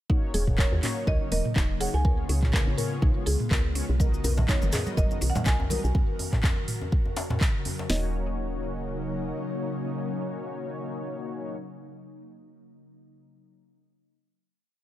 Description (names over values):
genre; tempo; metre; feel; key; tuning
afro house; 123 BPM; 4/4; swing 55% on 16ths; Eb minor; A4 = 440 Hz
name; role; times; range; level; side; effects
ethereal airy pad; sustained chords; 0.9-11.6 s; Db3 to A#4; -35 LUFS; left 1 dB; ensemble chorus, built-in reverb, sidechain pumping
mallet-like synth pluck; arpeggios; 0.1-8.1 s; Db4 to Bb4; -36 LUFS; left 1 dB; chorus, sidechain pumping, digital delay
mellow synth brass; stabs; 0.1-11.6 s; Bb3 to D#5; -36 LUFS; left 2 dB; chorus, sidechain pumping, digital delay
afro-pop drum kit; drums; 0.1-8.0 s; hi-hat, kick drum, snare drum; -25 LUFS; equal; none
woody FM bass; bass; 0.3-9.3 s; Eb1 to Eb2; -28 LUFS; equal; sidechain pumping
afro-pop drum kit; drums; 0.3-7.8 s; handclaps, hi-hat, toms; -31 LUFS; right 1 dB; none
marimba with medium hard mallets; melody; 0.6-11.6 s; Db5 to Ab5; -36 LUFS; right 2 dB; digital delay
congas; percussion; 4.0-5.8 s; none; -35 LUFS; right 3 dB; none
maracas; percussion; 4.0-5.9 s; none; -39 LUFS; left 4 dB; none
djembe; percussion; 4.2-7.9 s; none; -35 LUFS; left 2 dB; none
room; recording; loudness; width
digital ambience; none; -24 LUFS; side -14 dB against mid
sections
0.1-7.9 drop; 7.9-11.8 final chord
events
drop 0.1-7.9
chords
0.1 Ebm7; 2.0 Db7; 4.0 Bmaj7; 6.0 Gb; 7.9 Ebm7